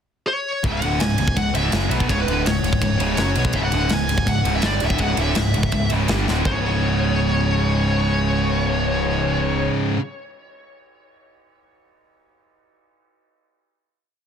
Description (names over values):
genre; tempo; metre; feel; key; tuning
heavy metal; 165 BPM; 4/4; straight; C# phrygian; A4 = 440 Hz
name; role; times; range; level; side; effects
high-gain lead guitar; melody; 0.3-9.7 s; B4 to G#5; -25 LUFS; left 1 dB; distortion, digital delay
distorted electric guitar; riff; 0.6-10.0 s; C#2 to B3; -26 LUFS; left 9 dB; overdrive
heavy high-gain guitar; riff; 0.6-10.0 s; C#2 to B3; -28 LUFS; right 1 dB; distortion
sludgy distorted guitar; riff; 0.6-10.0 s; C#2 to B3; -25 LUFS; right 10 dB; overdrive
growling picked electric bass; bass; 0.6-9.7 s; C#1 to B1; -24 LUFS; equal; overdrive
tight metal drum kit; drums; 0.6-6.5 s; kick drum, ride cymbal, snare drum; -25 LUFS; equal; soft clipping on kick
rich studio string section; sustained chords; 3.5-9.7 s; E3 to C#5; -37 LUFS; left 1 dB; none
room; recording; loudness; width
small room ambience; dense, heavily limited modern master; -18 LUFS; side -8 dB against mid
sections
0.0-0.6 pickup bar; 0.6-6.5 riff; 6.5-9.3 final chord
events
drum fill 6.3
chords
0.0 N.C.; 0.6 C#m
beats
0.28 | 0.64 1.00 1.37 1.73 | 2.10 2.46 2.82 3.19 | 3.55 3.91 4.28 4.64 | 5.00 5.37 5.73 6.09 | 6.45 6.82 7.18 7.54 | 7.90 8.26 8.62 8.98